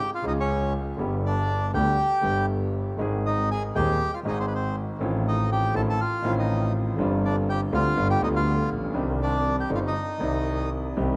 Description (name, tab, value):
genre	tango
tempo	121 BPM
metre	4/4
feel	rubato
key	C harmonic minor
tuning	A4 = 438 Hz
part	bandoneon	melody	0.0-10.7 s	C4 to A5	-30 LUFS	equal	none
part	warm concert grand piano	accompaniment	0.2-11.2 s	Eb1 to Ab4	-29 LUFS	equal	none
part	warm double bass	bass	0.2-11.2 s	G1 to Eb2	-30 LUFS	equal	none
room	moderate plate reverb, RT60 3.4 s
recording	rough home demo mix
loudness	-25 LUFS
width	mono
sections	0.0-11.0 A section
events	none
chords	0.0 Db; 1.0 G; 3.0 Ab; 5.0 F7/A; 7.0 G7sus4; 8.0 G7; 9.0 Cmadd9